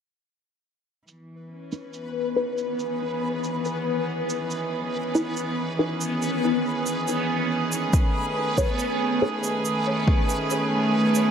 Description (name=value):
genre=ambient dub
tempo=70 BPM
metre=4/4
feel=straight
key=C# minor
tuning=A4 = 439 Hz
part: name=rich chamber string section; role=sustained chords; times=1.1-11.3 s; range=D#3 to B4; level=-26 LUFS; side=right 1 dB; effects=none
part: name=cabasa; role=drums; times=1.1-11.3 s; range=none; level=-34 LUFS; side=right 5 dB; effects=overdrive, low-pass filter on perc
part: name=backwards swelling texture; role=texture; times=2.0-11.3 s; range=B3 to B4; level=-28 LUFS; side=left 2 dB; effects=built-in reverb
part: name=filtered dub chord stab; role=stabs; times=1.7-9.5 s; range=D#4 to C#5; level=-28 LUFS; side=equal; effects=phaser, wide subtle chorus, cassette tape, dub echo
part: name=electronic kick drum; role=drums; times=7.9-10.2 s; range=none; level=-21 LUFS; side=equal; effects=overdrive
room=moderate spring reverb, RT60 2.5 s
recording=none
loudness=-22 LUFS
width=side -8 dB against mid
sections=1.1-11.3 A section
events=fade-in on string section 1.1-11.3; filter sweep on synth stab 1.1-11.3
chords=1.1 C#m9; 7.9 B13